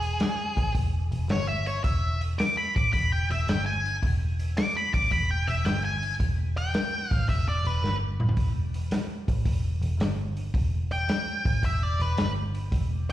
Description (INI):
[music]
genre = blues rock power trio and southern rock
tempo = 110 BPM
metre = 4/4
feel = swing 68% on 8ths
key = unclear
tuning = A4 = 440 Hz
[part]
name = octave-fuzz lead guitar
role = melody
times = 0.0-13.1 s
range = G#4 to D6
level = -29 LUFS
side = left 1 dB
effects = distortion, slapback echo, tape echo
[part]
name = vintage muted picked electric bass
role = bass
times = 0.0-13.1 s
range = E1 to A1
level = -27 LUFS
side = equal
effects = none
[part]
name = vintage drum kit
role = drums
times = 0.0-13.1 s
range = hi-hat, kick drum, snare drum, toms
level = -28 LUFS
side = equal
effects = slapback echo
[sound]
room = little or no reverb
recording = live gig heard through the venue's PA, recital hall reverb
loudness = -24 LUFS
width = side -13 dB against mid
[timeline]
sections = 0.0-13.1 A section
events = lead electric guitar solo 0.0-13.1; drum fill 7.8-8.4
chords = none